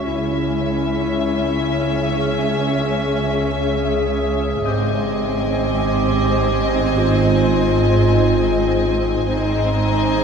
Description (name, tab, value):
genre	cinematic, suspense film score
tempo	52 BPM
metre	4/4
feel	straight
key	unclear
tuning	A4 = 442 Hz
part	rich studio violin section	melody	0.0-10.2 s	E5 to G#5	-30 LUFS	left 4 dB	none
part	dark clarinet	second line	0.0-10.2 s	D#4 to G#4	-22 LUFS	left 2 dB	none
part	organ-like drone	drone	0.0-10.2 s	G#1 to C#2	-26 LUFS	equal	ensemble chorus, built-in reverb
part	concert harp	texture	0.0-8.6 s	D#5 to G6	-32 LUFS	left 7 dB	none
part	rich studio violin section	second line	0.1-10.2 s	D#5 to E5	-27 LUFS	left 3 dB	none
part	warm studio viola section	accompaniment	0.1-10.2 s	B#3 to C#4	-24 LUFS	right 3 dB	none
part	ethereal airy pad	sustained chords	0.1-10.2 s	D#4 to E5	-26 LUFS	left 1 dB	ensemble chorus, built-in reverb
part	rich studio double bass section	bass	0.1-10.2 s	G#1 to C#2	-25 LUFS	right 3 dB	none
part	warm studio cello section	bass	0.1-10.2 s	C#2 to G#2	-25 LUFS	right 3 dB	none
room	wet scoring stage reverb, RT60 1.9 s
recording	heard from further back in the room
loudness	-16 LUFS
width	side -6 dB against mid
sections	0.0-10.2 A section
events	none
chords	0.0 C#m; 4.7 G#